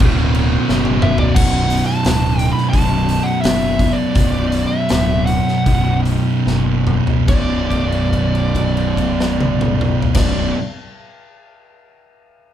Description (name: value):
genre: stoner and doom metal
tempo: 71-88 BPM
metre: 4/4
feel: straight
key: B minor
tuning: A4 = 441 Hz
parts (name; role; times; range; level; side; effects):
- high-gain distorted guitar; riff; 0.0-1.4 s; B1 to B2; -24 LUFS; left 3 dB; distortion
- thick fuzz guitar; riff; 0.0-10.5 s; B1 to B2; -22 LUFS; left 7 dB; distortion
- thick fuzz guitar; riff; 0.0-10.5 s; B1 to B2; -19 LUFS; right 4 dB; distortion
- fuzz fingered electric bass; bass; 0.0-10.5 s; B0 to F#1; -21 LUFS; equal; overdrive
- big rock drum kit; drums; 0.0-10.4 s; crash cymbal, hi-hat, kick drum, snare drum, toms; -19 LUFS; equal; none
- fuzz lead guitar; melody; 1.0-10.5 s; D5 to B5; -22 LUFS; equal; distortion
room: moderate large studio reverb, RT60 0.8 s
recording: band playing live in one room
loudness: -14 LUFS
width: side -10 dB against mid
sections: 0.0-1.4 A section; 1.4-7.3 B section; 7.3-10.7 C section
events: drum fill 0.7-1.4, 6.5-7.3; slowing down 1.4-7.3; held note 7.3-10.2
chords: 0.0 Bm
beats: 0.01 0.69 | 1.36 2.05 2.74 3.44 | 4.16 4.90 5.66 6.45 | 7.28 8.12 8.97 9.81